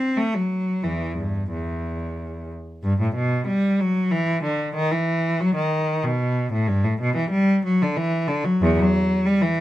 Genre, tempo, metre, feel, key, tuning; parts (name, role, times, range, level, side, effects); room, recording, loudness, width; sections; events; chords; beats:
classical, baroque-style suite movement for unaccompanied cello; 94 BPM; 3/4; rubato; E minor; A4 = 441 Hz
rich cello; solo; 0.0-9.6 s; E2 to C4; -20 LUFS; equal
light reverb; dark, warm production; -20 LUFS; side -14 dB against mid
0.0-2.9 A section; 2.9-9.6 B section
0.20 | 0.86 1.52 2.19 | 2.85 3.50 4.13 | 4.78 5.42 6.06 | 6.69 7.32 7.96 | 8.61 9.25